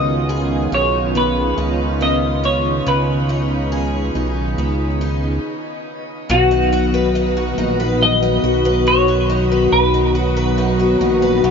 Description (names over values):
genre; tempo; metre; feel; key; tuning
dream pop; 70 BPM; 4/4; straight; B lydian; A4 = 440 Hz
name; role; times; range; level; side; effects
semi-hollow electric guitar; melody; 0.0-11.5 s; F#4 to D#5; -20 LUFS; equal; analog chorus, digital delay
warm analog pad; sustained chords; 0.0-11.5 s; D#3 to F#4; -22 LUFS; right 2 dB; chorus
picked twelve-string acoustic guitar; arpeggios; 0.0-11.5 s; B2 to B4; -20 LUFS; left 3 dB; ensemble chorus, digital delay
fat analog bass; bass; 0.0-11.5 s; A#1 to C#2; -20 LUFS; right 1 dB; none
room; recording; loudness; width
moderate shimmer reverb, RT60 9.4 s; nothing above 7.5 kHz; -14 LUFS; side -6 dB against mid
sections
0.0-6.3 A section; 6.3-11.5 B section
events
stop 5.4-6.3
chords
0.0 C#9; 6.3 B